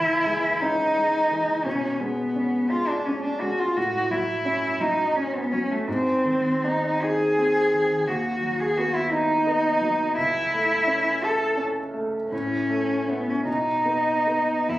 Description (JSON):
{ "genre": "classical, romantic duo for cello and grand piano", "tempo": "48-59 BPM (dotted quarters)", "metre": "6/8", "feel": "rubato", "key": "C# minor", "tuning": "A4 = 440 Hz", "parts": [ { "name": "dark cello", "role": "melody", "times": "0.0-14.8 s", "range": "A3 to A4", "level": "-22 LUFS", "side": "equal", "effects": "none" }, { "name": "clear concert grand piano", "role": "accompaniment", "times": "0.0-14.8 s", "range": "C#2 to E4", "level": "-28 LUFS", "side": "right 1 dB", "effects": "none" } ], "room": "moderate recital hall reverb, RT60 1.4 s", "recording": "recorded on a phone in the room, club reverb", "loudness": "-21 LUFS", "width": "side -16 dB against mid", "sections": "0.0-14.8 A section", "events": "none", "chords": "0.0 C#m; 1.7 C#5/B; 3.8 F#m/A; 5.9 G#; 8.1 B/D#; 10.2 A/C#; 12.3 A; 13.5 N.C.", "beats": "0.61 | 1.66 2.71 | 3.77 4.80 | 5.87 7.02 | 8.07 9.11 | 10.17 11.23 | 12.32 13.47 | 14.68" }